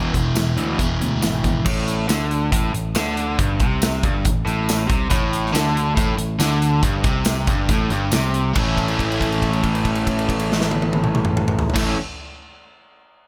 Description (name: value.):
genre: classic rock.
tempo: 139 BPM.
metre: 4/4.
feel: straight.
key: unclear.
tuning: A4 = 440 Hz.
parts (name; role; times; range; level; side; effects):
cranked stack guitar; riff; 0.0-12.0 s; E2 to A4; -25 LUFS; equal; overdrive.
crunchy overdriven guitar; riff; 0.0-1.7, 5.1-12.0 s; E2 to E4; -26 LUFS; equal; none.
fingered electric bass; bass; 0.0-11.9 s; E1 to D2; -27 LUFS; equal; none.
big rock drum kit; drums; 0.1-11.9 s; crash cymbal, hi-hat, kick drum, snare drum, tambourine, toms; -25 LUFS; equal; none.
room: little or no reverb.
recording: none.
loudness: -20 LUFS.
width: mono.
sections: 0.0-1.7 A section; 1.7-8.6 B section; 8.6-12.0 C section.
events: held note 8.6-11.8.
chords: 0.0 E; 1.7 Gsus24; 8.6 A.